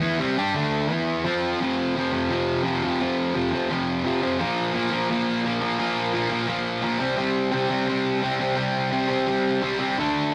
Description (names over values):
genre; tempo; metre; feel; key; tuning
rock; 172 BPM; 4/4; straight; unclear; A4 = 440 Hz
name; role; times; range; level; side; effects
fuzz guitar; solo; 0.0-10.3 s; F2 to G4; -24 LUFS; equal; distortion
room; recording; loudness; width
moderate studio reverb, RT60 0.6 s; rough rehearsal-room recording, warm saturation; -24 LUFS; mono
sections
0.0-1.6 A section; 1.6-10.3 B section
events
none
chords
0.0 D5; 0.9 E5; 1.3 F5; 4.4 Bb5; 7.0 C5